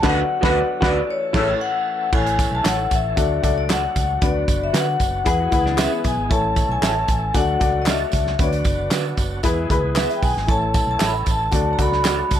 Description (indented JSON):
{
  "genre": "uptempo 1960s-style soul",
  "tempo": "115 BPM",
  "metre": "4/4",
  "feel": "straight",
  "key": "A major",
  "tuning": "A4 = 440 Hz",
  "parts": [
    { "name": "vibraphone with hard mallets", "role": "melody", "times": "0.0-12.4 s", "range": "C#5 to B5", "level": "-22 LUFS", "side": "left 3 dB", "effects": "none" },
    { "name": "bright saxophone section", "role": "second line", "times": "0.0-1.5 s", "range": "C#3 to F#4", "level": "-26 LUFS", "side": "equal", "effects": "none" },
    { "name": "warm upright piano", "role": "accompaniment", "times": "0.0-12.4 s", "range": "A2 to D5", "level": "-25 LUFS", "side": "left 5 dB", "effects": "tube saturation" },
    { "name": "overdriven tonewheel organ", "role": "sustained chords", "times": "0.0-12.4 s", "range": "D3 to A4", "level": "-32 LUFS", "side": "right 2 dB", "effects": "slow rotary speaker" },
    { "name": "electric guitar through a small old amp", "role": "stabs", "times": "0.0-12.2 s", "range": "E4 to E5", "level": "-27 LUFS", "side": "right 9 dB", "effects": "spring reverb" },
    { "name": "vintage muted fingered electric bass", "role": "bass", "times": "0.0-12.4 s", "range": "F#1 to D3", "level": "-25 LUFS", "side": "right 1 dB", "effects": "none" },
    { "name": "warm soul drum kit", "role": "drums", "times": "0.0-12.4 s", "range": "crash cymbal, hi-hat, kick drum, snare drum", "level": "-22 LUFS", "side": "right 1 dB", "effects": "none" },
    { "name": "tambourine and handclaps", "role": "percussion", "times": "2.1-12.4 s", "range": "none", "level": "-31 LUFS", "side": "equal", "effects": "none" },
    { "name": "electric guitar through a small old amp", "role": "riff", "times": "5.3-6.3 s", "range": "B3 to G#4", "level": "-29 LUFS", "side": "left 6 dB", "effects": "phaser" }
  ],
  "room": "light reverb",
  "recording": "none",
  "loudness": "-17 LUFS",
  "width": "side -10 dB against mid",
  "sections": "0.0-2.1 A section; 2.1-12.4 B section",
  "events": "vibraphone solo 0.0-2.1; band accent 0.0-2.1",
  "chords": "0.0 Bm/D; 1.1 A; 3.2 D; 4.2 Bm; 5.3 E; 6.3 A; 7.4 D; 8.4 Bm; 9.4 E; 10.5 A; 11.5 D"
}